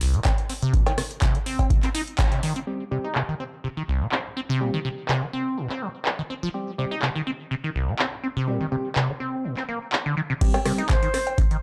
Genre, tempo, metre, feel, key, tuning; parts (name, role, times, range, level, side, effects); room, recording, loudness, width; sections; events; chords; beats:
acid house; 124 BPM; 4/4; swing 53% on 16ths; C minor; A4 = 442 Hz
liquid acid bass; riff; 0.0-11.6 s; C2 to Eb4; -29 LUFS; equal; phaser, tube saturation, lush chorus, sidechain pumping, tape echo
booming analog drum machine; drums; 0.0-11.6 s; cowbell, crash cymbal, handclaps, hi-hat, rim click; -30 LUFS; equal; low-pass filter on hats, low-pass filter on snare, low-pass filter on perc, low-pass filter on cymbals, low-pass filter on room
electronic kick drum; drums; 0.3-2.3, 10.4-11.5 s; -24 LUFS; equal
percussive organ stab; stabs; 2.7-10.8 s; G3 to G4; -33 LUFS; equal; chorus, phaser, vintage 12-bit sampler grit, tape echo
bright silver concert flute; melody; 10.9-11.4 s; C5; -29 LUFS; equal
light reverb, digital ambience; dry, gritty hardware recording, transformer saturation, cassette tape; -25 LUFS; mono
0.0-2.7 A section; 2.7-10.4 B section; 10.4-11.6 C section
filter sweep on acid bass 0.0-2.7; band accent 2.2; drop 10.4-11.6
0.0 N.C.; 2.7 C5
0.25 | 0.73 1.22 1.70 2.19 | 2.67 3.15 3.64 4.12 | 4.61 5.09 5.57 6.06 | 6.54 7.03 7.51 7.99 | 8.48 8.96 9.45 9.93 | 10.41 10.90 11.38